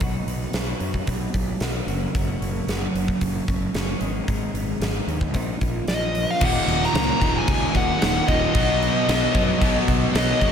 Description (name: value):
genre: quiet-loud alternative rock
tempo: 112 BPM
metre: 4/4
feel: straight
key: unclear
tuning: A4 = 440 Hz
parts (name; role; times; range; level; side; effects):
- twelve-string electric guitar; arpeggios; 0.0-6.4 s; Gb2 to F#4; -29 LUFS; right 1 dB; phaser, analog delay
- fuzz fingered electric bass; bass; 0.0-10.5 s; Eb1 to F#2; -27 LUFS; equal; overdrive
- huge arena drum kit; drums; 0.0-10.5 s; crash cymbal, hi-hat, kick drum, snare drum; -24 LUFS; equal; none
- dark smooth lead guitar; melody; 5.9-10.5 s; Eb5 to Bb5; -24 LUFS; left 1 dB; overdrive, slapback echo, analog delay
- distorted electric guitar; riff; 6.4-10.5 s; Eb2 to B3; -27 LUFS; right 9 dB; distortion
- distorted electric guitar; riff; 6.4-10.5 s; Eb2 to B3; -26 LUFS; equal; distortion, slapback echo
- fuzz guitar; riff; 6.4-10.5 s; Eb2 to B3; -27 LUFS; left 10 dB; distortion, slapback echo
room: moderate scoring stage reverb, RT60 2.0 s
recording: big arena sound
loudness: -20 LUFS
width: side -8 dB against mid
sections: 0.0-6.4 A section; 6.4-10.5 B section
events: none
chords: 0.0 B; 1.9 Gb; 4.0 Abm; 5.4 Bbsus4; 6.4 Ebm; 8.5 B